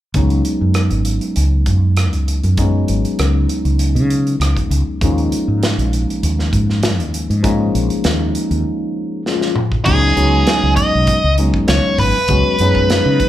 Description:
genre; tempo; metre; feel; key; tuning
electric jazz fusion; 99 BPM; 4/4; straight; Db mixolydian; A4 = 441 Hz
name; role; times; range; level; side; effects
mellow fretless electric bass; bass; 0.1-13.2 s; Ab1 to Db3; -16 LUFS; equal; none
modern studio drum kit; drums; 0.1-13.3 s; crash cymbal, hi-hat, kick drum, rim click, snare drum, toms; -21 LUFS; equal; none
barky tine electric piano; accompaniment; 0.2-13.3 s; F3 to Gb4; -19 LUFS; left 2 dB; overdrive, phaser
biting lead guitar; melody; 9.9-13.3 s; Ab4 to Eb5; -16 LUFS; equal; overdrive
room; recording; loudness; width
light reverb; band playing live in one room; -13 LUFS; side -13 dB against mid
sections
0.2-9.9 A section; 9.9-13.3 B section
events
break 8.7-9.9; drum fill 9.3-9.9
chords
0.2 Db9sus4; 5.0 Eb9sus4; 9.6 N.C.; 9.9 Db9sus4

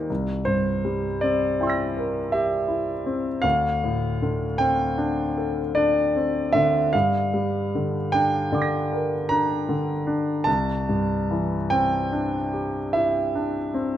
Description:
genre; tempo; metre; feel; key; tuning
classical, impressionist solo piano; 52 BPM (dotted quarters); 9/8; uneven beats, rubato; unclear; A4 = 445 Hz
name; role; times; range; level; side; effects
clear concert grand piano; solo; 0.0-14.0 s; C2 to Bb6; -21 LUFS; equal; none
room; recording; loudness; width
moderate recital hall reverb, RT60 1.4 s; close, detailed microphones; -21 LUFS; side -11 dB against mid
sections
0.0-14.0 A section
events
none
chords
0.1 C9; 3.4 D7sus4; 6.9 Gm7; 10.5 Cadd9

